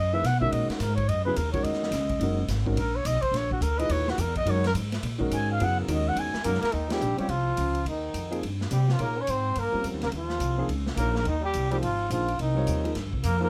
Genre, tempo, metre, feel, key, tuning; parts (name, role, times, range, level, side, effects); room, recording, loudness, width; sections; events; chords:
modal jazz; 212 BPM; 4/4; swing 62% on 8ths; F# mixolydian, Eb mixolydian from 6.7 s; A4 = 439 Hz
breathy trumpet; melody; 0.0-13.5 s; Eb4 to G#5; -31 LUFS; equal
upright bass; bass; 0.0-13.5 s; F#1 to C3; -30 LUFS; equal
dark upright piano; accompaniment; 0.1-13.5 s; A#2 to Db5; -34 LUFS; equal
swinging big-band drum kit; drums; 0.2-13.3 s; hi-hat, kick drum, ride cymbal, snare drum; -38 LUFS; equal
bright trombone; second line; 6.4-13.5 s; Eb3 to Db4; -37 LUFS; equal
little or no reverb; -27 LUFS; mono
0.0-6.7 A section; 6.7-13.5 B section
trumpet solo 0.0-6.7; band accent 6.9
0.0 F#9; 6.7 Eb13; 11.3 Abadd9